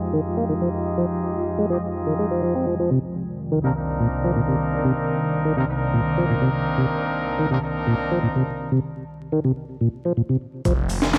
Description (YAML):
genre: breakbeat, breaks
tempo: 124 BPM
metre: 4/4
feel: straight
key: unclear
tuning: A4 = 439 Hz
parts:
  - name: warbly tape-like pad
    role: sustained chords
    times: 0.0-11.2 s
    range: C2 to A5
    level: -29 LUFS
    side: equal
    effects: chorus, built-in reverb, sidechain pumping
  - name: bright horn section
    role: stabs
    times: 0.0-8.7 s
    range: Bb3 to Eb5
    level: -29 LUFS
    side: equal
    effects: vintage 12-bit sampler grit, tape echo
  - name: tonewheel organ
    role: riff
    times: 0.1-10.7 s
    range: Bb2 to C4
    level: -25 LUFS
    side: equal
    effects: slow rotary speaker, low-pass filter, tape echo
  - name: phased detuned saw bass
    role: bass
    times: 10.7-11.2 s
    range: F1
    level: -28 LUFS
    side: equal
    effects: phaser
  - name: breakbeat sampler-style drum kit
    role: drums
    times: 10.7-11.2 s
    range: hi-hat, kick drum, snare drum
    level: -22 LUFS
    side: equal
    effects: studio reverb
  - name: garage drum kit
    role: drums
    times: 10.7-11.2 s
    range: handclaps, hi-hat, shaker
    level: -32 LUFS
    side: equal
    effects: low-pass filter on perc, studio reverb, low-pass filter on hats, low-pass filter on snare
room: light reverb, digital ambience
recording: dry, gritty hardware recording, vinyl crackle, low-pass filter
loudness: -23 LUFS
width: mono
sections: 0.0-10.7 A section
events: filter sweep on ambient pad 0.0-10.7; filter sweep 0.0-10.7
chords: 0.0 Fm9; 2.9 Cm9; 10.7 Fm9